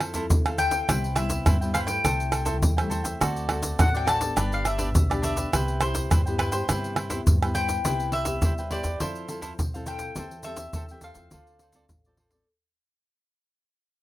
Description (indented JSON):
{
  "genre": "samba and choro",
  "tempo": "104 BPM",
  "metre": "4/4",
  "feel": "straight",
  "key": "C major",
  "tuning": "A4 = 442 Hz",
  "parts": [
    { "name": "mandolin", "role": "melody", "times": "0.0-12.2 s", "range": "B4 to A5", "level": "-30 LUFS", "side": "left 3 dB", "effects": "none" },
    { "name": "cavaquinho", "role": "accompaniment", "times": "0.0-12.5 s", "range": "D4 to G5", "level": "-34 LUFS", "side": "right 3 dB", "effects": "none" },
    { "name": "nylon-string guitar", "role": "accompaniment", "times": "0.0-12.5 s", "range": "G2 to A4", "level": "-34 LUFS", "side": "left 2 dB", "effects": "none" },
    { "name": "upright bass", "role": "bass", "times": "0.0-12.4 s", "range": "G1 to G2", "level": "-31 LUFS", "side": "equal", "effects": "none" },
    { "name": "pandeiro, tamborim, tube shaker and surdo", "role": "percussion", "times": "0.0-12.5 s", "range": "none", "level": "-25 LUFS", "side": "equal", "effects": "none" }
  ],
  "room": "light reverb",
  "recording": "rough home demo mix",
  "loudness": "-22 LUFS",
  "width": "side -16 dB against mid",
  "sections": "0.0-7.8 A section; 7.8-12.5 B section",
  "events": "fade-out 7.8-12.5",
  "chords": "0.0 Fmaj7; 0.9 Cmaj7; 2.1 Am7/C; 3.2 D7; 4.4 G; 5.5 Cmaj7; 9.0 Fmaj7; 10.2 Am7/E; 11.3 Dm7"
}